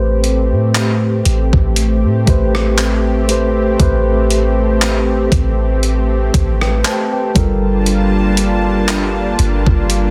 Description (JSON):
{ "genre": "contemporary R&B", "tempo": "59 BPM", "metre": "4/4", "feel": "swing 54% on 16ths", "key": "unclear", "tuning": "A4 = 438 Hz", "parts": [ { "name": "mellow tine electric piano", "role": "accompaniment", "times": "0.0-10.1 s", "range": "G3 to A5", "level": "-20 LUFS", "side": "equal", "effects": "none" }, { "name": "lush unison pad", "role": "sustained chords", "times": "0.0-10.1 s", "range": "G3 to A5", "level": "-22 LUFS", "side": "equal", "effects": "chorus, sidechain pumping" }, { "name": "clean 808-style bass", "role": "bass", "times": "0.0-10.1 s", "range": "G1 to A2", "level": "-18 LUFS", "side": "equal", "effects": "none" }, { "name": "dusty soul sampler-style drum kit", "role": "drums", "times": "0.2-10.1 s", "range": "handclaps, hi-hat, kick drum, rim click", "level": "-19 LUFS", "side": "equal", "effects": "overdrive" } ], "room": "little or no reverb", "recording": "dense, heavily limited modern master", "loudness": "-14 LUFS", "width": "mono", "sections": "0.0-10.1 A section", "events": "none", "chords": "0.0 Am9; 7.4 Gm9" }